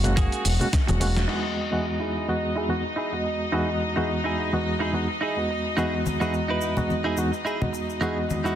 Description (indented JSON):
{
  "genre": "nu-disco, nu disco",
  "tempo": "107 BPM",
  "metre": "4/4",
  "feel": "swing 55% on 16ths",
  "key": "E major",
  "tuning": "A4 = 440 Hz",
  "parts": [
    { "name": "barky reed electric piano", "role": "accompaniment", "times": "0.0-8.6 s", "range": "E2 to D#5", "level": "-26 LUFS", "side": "equal", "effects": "overdrive, fast tremolo, sidechain pumping, ping-pong delay" },
    { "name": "rich chamber string section", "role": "sustained chords", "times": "0.0-8.6 s", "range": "D#4 to F#5", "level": "-32 LUFS", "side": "left 1 dB", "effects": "sidechain pumping, low-pass filter" },
    { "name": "fingered electric bass with an envelope filter", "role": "bass", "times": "0.0-1.2 s", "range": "E1 to F#1", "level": "-23 LUFS", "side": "equal", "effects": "none" },
    { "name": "dusty soul sampler-style drum kit", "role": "drums", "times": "0.0-1.4 s", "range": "crash cymbal, hi-hat, shaker, snare drum", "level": "-31 LUFS", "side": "equal", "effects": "low-pass filter on hats, low-pass filter on perc, low-pass filter on snare, low-pass filter on cymbals, low-pass filter on room" },
    { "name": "congas and cabasa", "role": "percussion", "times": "0.0-1.1, 5.8-8.6 s", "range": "none", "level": "-31 LUFS", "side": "left 2 dB", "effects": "none" },
    { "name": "direct-recorded clean electric guitar", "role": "riff", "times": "0.2-8.6 s", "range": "A#3 to B4", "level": "-30 LUFS", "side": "right 2 dB", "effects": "analog chorus, low-pass filter, ping-pong delay" },
    { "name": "electronic kick drum", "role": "drums", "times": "0.2-0.9 s", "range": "none", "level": "-22 LUFS", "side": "equal", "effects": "none" }
  ],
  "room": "moderate plate reverb, RT60 2.6 s",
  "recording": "dense, heavily limited modern master",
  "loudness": "-23 LUFS",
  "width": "side -10 dB against mid",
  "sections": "0.0-1.3 A section; 1.3-8.6 B section",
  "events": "filter sweep on clean electric guitar 0.0-1.3, 1.3-8.6; drum fill 0.7-1.3; band accent 1.2",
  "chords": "0.0 F#add9; 1.3 Emaj7"
}